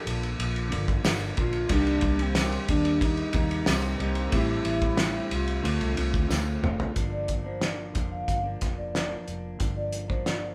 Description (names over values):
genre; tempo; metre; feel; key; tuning
indie pop, bedroom pop; 91 BPM; 4/4; straight; G minor; A4 = 445 Hz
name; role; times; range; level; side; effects
warbly nostalgic lead; melody; 0.0-6.3 s; C4 to F4; -32 LUFS; equal; chorus
chorused retro synth keys; accompaniment; 0.0-7.0 s; Eb3 to E5; -39 LUFS; equal; none
clean electric guitar; accompaniment; 0.0-10.5 s; A2 to F4; -37 LUFS; equal; warbly pitch drift
vintage muted fingered electric bass; bass; 0.1-10.5 s; F1 to Eb2; -34 LUFS; equal; none
cloth-damped thuddy drum kit; drums; 0.1-10.4 s; hi-hat, kick drum, ride cymbal, snare drum, toms; -30 LUFS; equal; none
tambourine; percussion; 1.0-6.5 s; none; -46 LUFS; equal; none
vibraphone with soft mallets; second line; 7.1-10.4 s; C5 to F5; -36 LUFS; equal; none
room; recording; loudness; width
light reverb; band playing live in one room; -27 LUFS; mono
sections
0.0-7.0 A section; 7.0-10.5 B section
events
drum fill 6.3-7.0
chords
0.0 Gm7; 1.7 Cm7; 4.3 Am7; 5.6 Dm7; 7.0 Gm7